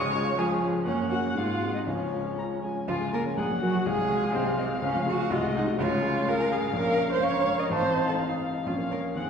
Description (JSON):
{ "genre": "quick classical-period movement for piano quintet", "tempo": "124 BPM", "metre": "2/4", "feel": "rubato", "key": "Db major", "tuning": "A4 = 440 Hz", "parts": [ { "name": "muted violin", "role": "melody", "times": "0.0-9.3 s", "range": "C4 to Db6", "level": "-34 LUFS", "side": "left 5 dB", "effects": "none" }, { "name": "muted cello", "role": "second line", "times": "0.0-9.3 s", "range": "C4 to Eb5", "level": "-29 LUFS", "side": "right 3 dB", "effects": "none" }, { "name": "muted violin", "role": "second line", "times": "0.0-9.3 s", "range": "Db5 to Bb5", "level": "-34 LUFS", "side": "left 3 dB", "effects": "none" }, { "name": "muted viola", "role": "accompaniment", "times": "0.0-9.3 s", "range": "C3 to Eb4", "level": "-32 LUFS", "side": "right 1 dB", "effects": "none" }, { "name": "warm baby grand piano", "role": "accompaniment", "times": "0.0-9.3 s", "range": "A1 to Eb6", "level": "-30 LUFS", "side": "left 1 dB", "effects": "none" } ], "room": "wet concert hall reverb, RT60 1.8 s", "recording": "heard from further back in the room", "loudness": "-24 LUFS", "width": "side -6 dB against mid", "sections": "0.0-2.9 A section; 2.9-9.3 A section", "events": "none", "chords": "0.0 Db; 0.9 Gb; 1.4 Ab7; 1.9 Db; 3.4 Gb/Bb; 3.9 Ab7/C; 4.8 Db; 5.3 Ab7/C; 5.8 Db; 6.8 Bbm; 7.7 F7/A; 8.7 Bbm" }